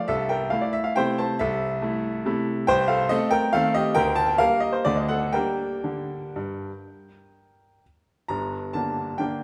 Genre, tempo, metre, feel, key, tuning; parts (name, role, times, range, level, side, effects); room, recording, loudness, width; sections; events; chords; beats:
classical, piano waltz; 114-148 BPM; 3/4; rubato; G minor; A4 = 440 Hz
bright concert grand piano; solo; 0.0-9.4 s; G1 to Bb5; -24 LUFS; equal
wet recital hall reverb, RT60 1.6 s; -24 LUFS; mono
0.0-8.3 A section; 8.3-9.4 B section
0.1 Am/C; 2.7 Adim/C; 4.0 Gm/D; 4.8 D; 5.3 Gm
| 0.08 0.52 0.97 | 1.40 1.83 2.26 | 2.69 3.11 3.54 | 3.96 4.39 4.85 | 5.33 5.83 6.35 | 6.84 7.32 7.81 | 8.30 8.75 9.20